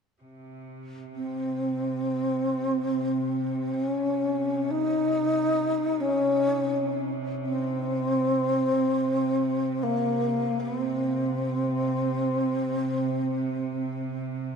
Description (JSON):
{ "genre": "caucasian folk, Caucasian lament", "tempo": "free time", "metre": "none", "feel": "none", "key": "C phrygian", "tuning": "A4 = 441 Hz", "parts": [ { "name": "clear chamber cello section", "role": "drone", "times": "0.2-14.6 s", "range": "C3", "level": "-34 LUFS", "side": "right 2 dB", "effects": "none" }, { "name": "breathy mellow wooden-headed alto flute", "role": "melody", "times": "1.1-14.6 s", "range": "Bb3 to Eb4", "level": "-25 LUFS", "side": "equal", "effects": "none" } ], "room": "wet cathedral reverb, RT60 5.5 s", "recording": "dark, warm production", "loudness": "-24 LUFS", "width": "side -6 dB against mid", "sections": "0.2-14.6 A section", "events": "none", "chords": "none", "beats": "free time" }